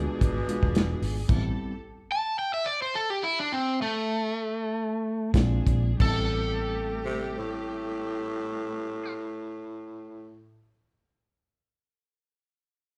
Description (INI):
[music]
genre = straight-eighth soul blues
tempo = 89-111 BPM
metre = 4/4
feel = swing 53% on 16ths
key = unclear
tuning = A4 = 440 Hz
[part]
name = growling tenor saxophone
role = second line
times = 0.0-1.4, 7.0-10.5 s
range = A2 to C3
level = -36 LUFS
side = equal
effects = none
[part]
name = mellow reed electric piano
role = accompaniment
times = 0.0-1.7, 5.3-9.1 s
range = G3 to F4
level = -37 LUFS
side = equal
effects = fast tremolo
[part]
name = dark chamber string section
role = sustained chords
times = 0.0-1.7, 5.3-9.1 s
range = E3 to A4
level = -43 LUFS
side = equal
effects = none
[part]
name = vintage muted fingered electric bass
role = bass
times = 0.0-1.5, 5.3-9.1 s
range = E1 to Bb1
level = -32 LUFS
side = equal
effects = none
[part]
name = warm soul drum kit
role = drums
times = 0.2-1.4, 5.3-6.2 s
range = crash cymbal, hi-hat, kick drum, snare drum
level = -28 LUFS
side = equal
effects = none
[part]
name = overdriven semi-hollow guitar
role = melody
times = 2.1-9.1 s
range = A3 to A5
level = -30 LUFS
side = equal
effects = none
[sound]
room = moderate large studio reverb, RT60 1.1 s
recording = band playing live in one room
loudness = -28 LUFS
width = mono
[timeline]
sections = 0.0-6.0 A section; 6.0-11.4 B section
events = slowing down 1.3-6.0; stop 1.3-5.3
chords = 0.0 E7b9; 1.3 Am7; 5.3 Bb7; 6.0 Am7